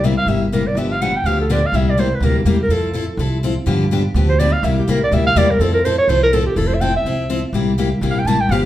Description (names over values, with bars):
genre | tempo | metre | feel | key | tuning
acoustic string swing (jazz manouche) | 248 BPM | 4/4 | swing 57% on 8ths | F major | A4 = 440 Hz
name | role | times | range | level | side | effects
warm clarinet | melody | 0.0-8.6 s | D4 to A5 | -18 LUFS | right 1 dB | none
picked steel-string acoustic guitar | accompaniment | 0.0-8.7 s | C3 to A4 | -19 LUFS | left 2 dB | none
upright bass | bass | 0.0-8.7 s | F1 to G2 | -19 LUFS | right 1 dB | none
room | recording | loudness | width
wet club reverb, RT60 0.8 s | heard from further back in the room | -14 LUFS | side -13 dB against mid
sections
0.0-6.6 A section; 6.6-8.7 A section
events
clarinet solo 0.0-8.7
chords
0.0 C7; 0.8 G7; 1.7 C7; 2.7 Fmaj7; 3.7 G7; 4.6 C7; 5.6 Fmaj7; 7.5 C7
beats
0.03 0.27 0.51 | 0.75 1.00 1.24 1.48 | 1.73 1.97 2.21 2.45 | 2.70 2.94 3.18 3.42 | 3.67 3.91 4.15 4.39 | 4.63 4.88 5.12 5.36 | 5.60 5.84 6.08 6.32 | 6.56 6.80 7.04 7.29 | 7.53 7.77 8.01 8.25 | 8.49